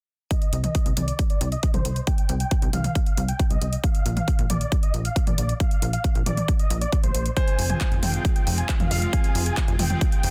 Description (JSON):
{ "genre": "uplifting trance", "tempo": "136 BPM", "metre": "4/4", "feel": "straight", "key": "C minor", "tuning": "A4 = 439 Hz", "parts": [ { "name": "big supersaw lead", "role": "melody", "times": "0.3-10.3 s", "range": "C5 to Ab5", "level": "-35 LUFS", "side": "equal", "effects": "sidechain pumping, low-pass filter, digital delay" }, { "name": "big-room dance drum kit", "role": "drums", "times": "0.3-10.3 s", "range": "handclaps, hi-hat, toms", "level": "-32 LUFS", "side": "equal", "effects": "overdrive, sidechain pumping on hats, sidechain pumping on toms" }, { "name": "electronic kick drum", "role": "drums", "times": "0.3-10.1 s", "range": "none", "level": "-24 LUFS", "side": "equal", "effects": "overdrive" }, { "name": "plucky analog bass", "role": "bass", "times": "0.5-10.3 s", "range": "F1 to C2", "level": "-28 LUFS", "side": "equal", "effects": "sidechain pumping" }, { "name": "clear grand piano", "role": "second line", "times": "7.4-9.7 s", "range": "C5 to F5", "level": "-36 LUFS", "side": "equal", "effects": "digital delay" }, { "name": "lush unison pad", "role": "sustained chords", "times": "7.4-10.3 s", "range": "C3 to F4", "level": "-35 LUFS", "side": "equal", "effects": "chorus, sidechain pumping" } ], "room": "little or no reverb", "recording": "dense, heavily limited modern master", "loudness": "-23 LUFS", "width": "mono", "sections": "0.3-10.3 A section", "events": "none", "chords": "0.3 Cmadd9; 3.8 Bb; 7.4 Fm" }